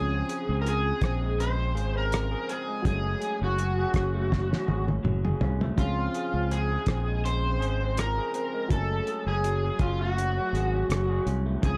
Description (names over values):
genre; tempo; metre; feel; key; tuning
indie pop, bedroom pop; 82 BPM; 4/4; swing 55% on 16ths; unclear; A4 = 442 Hz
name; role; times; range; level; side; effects
overdriven slide guitar; melody; 0.0-11.8 s; F4 to C5; -33 LUFS; equal; lush chorus, analog delay
dark upright piano; accompaniment; 0.0-11.8 s; F3 to Ab5; -42 LUFS; equal; none
electric guitar through a small old amp; accompaniment; 0.0-11.8 s; Gb2 to Ab4; -37 LUFS; equal; subtle chorus, warbly pitch drift, plate reverb
fingered electric bass; bass; 0.0-11.8 s; Gb1 to Db2; -30 LUFS; equal; none
cloth-damped thuddy drum kit; drums; 0.3-11.8 s; hi-hat, kick drum, rim click, snare drum, toms; -32 LUFS; equal; none
room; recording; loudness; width
light reverb; dark, warm production; -27 LUFS; mono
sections
0.0-11.8 A section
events
drum fill 4.3-5.8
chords
0.0 Dbmaj7; 2.9 Gbmadd9; 5.8 Dbmaj7; 8.7 Gbmadd9